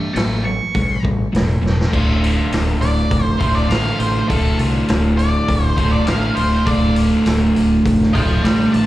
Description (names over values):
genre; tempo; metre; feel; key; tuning
blues rock power trio and southern rock; 101 BPM; 4/4; straight; D minor; A4 = 440 Hz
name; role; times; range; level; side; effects
octave-fuzz lead guitar; melody; 0.0-8.9 s; A4 to C#6; -23 LUFS; equal; distortion
crunchy overdriven guitar; riff; 0.0-8.9 s; D2 to F4; -18 LUFS; equal; none
growling fingered electric bass; bass; 0.0-8.9 s; D1 to C2; -19 LUFS; equal; overdrive
vintage drum kit; drums; 0.2-8.9 s; crash cymbal, hi-hat, kick drum, snare drum; -21 LUFS; equal; none
room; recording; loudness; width
light reverb; live gig heard through the venue's PA, club reverb; -14 LUFS; side -15 dB against mid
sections
0.0-1.9 A section; 1.9-8.9 B section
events
drum fill 1.6; lead electric guitar solo 1.9-8.9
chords
0.0 A7; 1.9 Dm